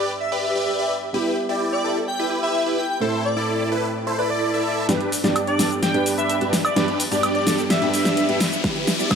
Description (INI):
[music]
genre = EDM, festival progressive house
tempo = 128 BPM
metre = 4/4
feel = straight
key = G major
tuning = A4 = 443 Hz
[part]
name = airy dreamy lead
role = melody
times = 0.0-8.4 s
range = B4 to G5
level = -26 LUFS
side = left 1 dB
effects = chorus, digital delay
[part]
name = dark baby grand piano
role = accompaniment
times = 0.0-9.2 s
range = G2 to A4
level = -27 LUFS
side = right 2 dB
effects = sidechain pumping
[part]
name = big supersaw lead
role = riff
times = 0.0-9.2 s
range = D4 to E5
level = -23 LUFS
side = right 1 dB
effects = phaser, sidechain pumping, low-pass filter, digital delay
[part]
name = big-room dance drum kit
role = drums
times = 0.1-9.2 s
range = cabasa, hi-hat, snare drum, woodblock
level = -22 LUFS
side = equal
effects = low-pass filter on perc, low-pass filter on snare, low-pass filter on hats, low-pass filter on room
[part]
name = riser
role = sound effects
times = 6.4-9.2 s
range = none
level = -31 LUFS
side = left 3 dB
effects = none
[part]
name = electronic kick drum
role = drums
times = 8.6-9.2 s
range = none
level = -26 LUFS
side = equal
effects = none
[sound]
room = moderate huge ambient reverb, RT60 5.2 s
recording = high-pass filter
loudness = -19 LUFS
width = side -6 dB against mid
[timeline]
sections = 0.0-4.9 A section; 4.9-9.2 B section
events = build-up 4.9-9.2; drum fill 4.9-9.2; filter sweep on supersaw synth 4.9-9.2; riser 6.4-9.2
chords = 0.0 G; 1.1 Em; 3.0 Am; 4.9 G; 8.6 Em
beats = 0.20 0.67 | 1.14 1.61 2.08 2.55 | 3.02 3.48 3.95 4.42 | 4.89 5.36 5.83 6.30 | 6.76 7.23 7.70 8.17 | 8.64 9.11